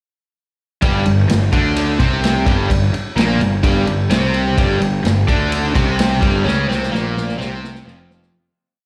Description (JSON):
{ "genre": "blues rock power trio and southern rock", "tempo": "128 BPM", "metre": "4/4", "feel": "straight", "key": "unclear", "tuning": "A4 = 440 Hz", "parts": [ { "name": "cranked stack guitar", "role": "riff", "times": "0.8-8.3 s", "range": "F2 to D4", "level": "-20 LUFS", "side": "equal", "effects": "overdrive, spring reverb, slapback echo" }, { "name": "fuzz picked electric bass", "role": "bass", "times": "0.8-8.3 s", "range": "F1 to D2", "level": "-22 LUFS", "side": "equal", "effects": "overdrive" }, { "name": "vintage drum kit", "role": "drums", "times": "0.8-8.3 s", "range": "kick drum, ride cymbal, snare drum", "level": "-22 LUFS", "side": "equal", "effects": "none" } ], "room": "small room ambience", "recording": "live gig heard through the venue's PA, club reverb", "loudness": "-16 LUFS", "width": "mono", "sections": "0.8-8.3 riff", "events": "fade-out 6.5-8.3; drum fill 6.5-8.3", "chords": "0.8 G5" }